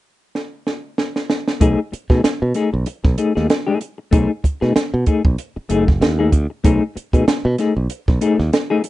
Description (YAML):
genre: funk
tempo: 95 BPM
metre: 4/4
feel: swing 56% on 16ths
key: B mixolydian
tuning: A4 = 440 Hz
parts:
  - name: compact cocktail drum kit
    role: drums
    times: 0.4-8.9 s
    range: hi-hat, kick drum, snare drum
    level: -17 LUFS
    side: right 1 dB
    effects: none
  - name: semi-hollow electric guitar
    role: accompaniment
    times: 1.6-8.9 s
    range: A3 to G#4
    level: -18 LUFS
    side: left 4 dB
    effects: tremolo
  - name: modern bright fingered electric bass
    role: bass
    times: 1.6-8.5 s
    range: F#1 to B2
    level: -18 LUFS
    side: right 1 dB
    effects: none
room: light reverb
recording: rough home demo mix, nothing above 10.7 kHz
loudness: -16 LUFS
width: side -16 dB against mid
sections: 0.0-1.6 A section; 1.6-8.9 B section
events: drum fill 0.3-1.6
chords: 0.0 N.C.; 1.6 B6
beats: 0.35 0.98 | 1.61 2.24 2.87 3.50 | 4.13 4.76 5.39 6.01 | 6.64 7.27 7.90 8.53